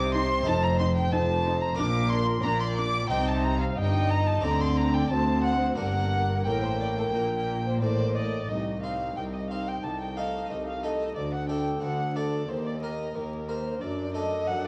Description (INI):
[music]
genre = classical, baroque-style concerto movement with solo episodes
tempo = 90 BPM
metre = 4/4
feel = straight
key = G minor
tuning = A4 = 439 Hz
[part]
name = dark violin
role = melody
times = 0.0-14.7 s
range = Bb4 to D6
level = -34 LUFS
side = equal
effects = none
[part]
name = warm studio violin section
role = melody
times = 0.0-14.7 s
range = G4 to D6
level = -40 LUFS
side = equal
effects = none
[part]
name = rich chamber violin section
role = second line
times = 0.0-14.7 s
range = A4 to A5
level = -37 LUFS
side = equal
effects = none
[part]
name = harpsichord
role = accompaniment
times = 0.0-14.7 s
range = C2 to C5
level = -36 LUFS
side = equal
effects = none
[part]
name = warm chamber cello section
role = bass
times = 0.0-14.7 s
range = C2 to D3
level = -34 LUFS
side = equal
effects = transformer saturation
[part]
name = warm chamber double bass section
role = bass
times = 0.0-8.5 s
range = F1 to D2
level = -32 LUFS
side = equal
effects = tube saturation
[part]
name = warm chamber viola section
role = accompaniment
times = 0.1-14.7 s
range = Bb3 to Eb4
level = -36 LUFS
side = equal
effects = none
[sound]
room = wet recital hall reverb, RT60 1.5 s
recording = worn, warbling old tape, cassette tape, vinyl crackle, warbly pitch drift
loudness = -27 LUFS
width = mono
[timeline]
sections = 0.0-8.5 A section; 8.5-14.7 B section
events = none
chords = 0.5 F5; 1.8 Bb; 3.1 Cm; 4.4 D7b13; 5.8 Gm; 8.5 Cm; 9.8 Adim/C; 11.2 D5; 12.5 Eb; 13.8 D/F#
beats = | 0.47 1.12 1.78 2.44 | 3.10 3.77 4.43 5.10 | 5.78 6.46 7.14 7.82 | 8.49 9.16 9.83 10.50 | 11.16 11.82 12.49 13.15 | 13.81 14.47